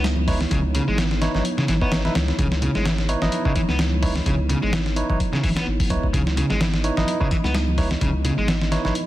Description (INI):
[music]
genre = breakbeat, breaks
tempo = 128 BPM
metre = 4/4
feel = swing 56% on 16ths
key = C# minor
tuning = A4 = 440 Hz
[part]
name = dark analog pad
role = sustained chords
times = 0.0-9.1 s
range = B3 to D#5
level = -30 LUFS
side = right 2 dB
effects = chorus, sidechain pumping
[part]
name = sludgy distorted guitar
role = riff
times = 0.0-8.5 s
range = C#3 to B3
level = -26 LUFS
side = equal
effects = overdrive, tape echo
[part]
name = saturated sub bass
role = bass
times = 0.0-8.9 s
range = G#1 to C#2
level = -24 LUFS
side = equal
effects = none
[part]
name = dusty soul sampler-style drum kit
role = drums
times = 0.0-9.1 s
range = hi-hat, kick drum, snare drum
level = -24 LUFS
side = equal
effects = studio reverb
[part]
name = congas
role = percussion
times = 0.2-8.9 s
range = none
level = -31 LUFS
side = equal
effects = none
[part]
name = barky tine electric piano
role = stabs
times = 0.3-8.9 s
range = D#4 to E5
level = -29 LUFS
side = right 2 dB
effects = overdrive, tape echo
[sound]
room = digital ambience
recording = dense, heavily limited modern master, vinyl crackle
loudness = -19 LUFS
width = side -15 dB against mid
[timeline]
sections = 0.0-9.1 A section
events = none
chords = 0.0 C#m9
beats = 0.04 | 0.51 0.98 1.45 1.92 | 2.39 2.86 3.33 3.79 | 4.26 4.73 5.20 5.67 | 6.14 6.61 7.08 7.54 | 8.01 8.48 8.95